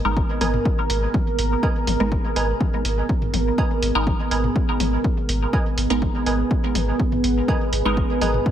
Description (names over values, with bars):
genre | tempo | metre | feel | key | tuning
dub techno | 123 BPM | 4/4 | straight | G# minor | A4 = 440 Hz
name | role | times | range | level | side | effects
deep dark ambient pad | sustained chords | 0.0-8.5 s | B3 to B4 | -25 LUFS | right 2 dB | chorus, built-in reverb, sidechain pumping
filtered dub chord stab | stabs | 0.0-8.1 s | G#3 to A#4 | -27 LUFS | right 1 dB | phaser, sidechain pumping, dub echo
warm sub bass | bass | 0.0-8.4 s | G#1 | -24 LUFS | equal | sidechain pumping
electronic kick drum | drums | 0.2-8.5 s | none | -22 LUFS | equal | studio ambience
wavetable chord stab | riff | 0.4-8.3 s | A#4 to G#5 | -30 LUFS | right 3 dB | cassette tape, sidechain pumping, dub echo
electronic hi-hat | drums | 0.4-8.3 s | none | -29 LUFS | right 2 dB | overdrive, studio ambience
electronic toms | percussion | 0.4-8.4 s | none | -32 LUFS | left 5 dB | none
room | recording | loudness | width
light reverb | none | -19 LUFS | side -10 dB against mid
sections
0.0-8.5 A section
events
none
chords
0.0 G#madd9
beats
0.17 0.65 1.14 | 1.63 2.12 2.61 3.09 | 3.58 4.07 4.56 5.04 | 5.53 6.02 6.51 7.00 | 7.48 7.97 8.46